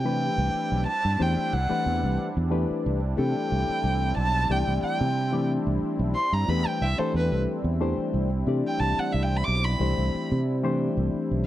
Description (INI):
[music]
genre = jazz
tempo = 91 BPM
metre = 4/4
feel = straight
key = C major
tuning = A4 = 441 Hz
[part]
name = dark violin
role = melody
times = 0.0-10.3 s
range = B4 to D6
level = -28 LUFS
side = right 1 dB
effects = slapback echo
[part]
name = bright reed electric piano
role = accompaniment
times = 0.0-11.5 s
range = E3 to D5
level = -29 LUFS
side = left 4 dB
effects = phaser
[part]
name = sweeping resonant pad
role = sustained chords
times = 0.0-11.5 s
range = G3 to E4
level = -34 LUFS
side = right 1 dB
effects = chorus
[part]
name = fretless electric bass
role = bass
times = 0.0-11.4 s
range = B1 to C3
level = -25 LUFS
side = right 1 dB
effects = none
[sound]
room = digital ambience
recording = dry, close 1970s-style studio recording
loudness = -23 LUFS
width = side -13 dB against mid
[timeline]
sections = 0.0-11.5 A section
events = violin solo 0.0-11.5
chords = 0.0 Cmaj9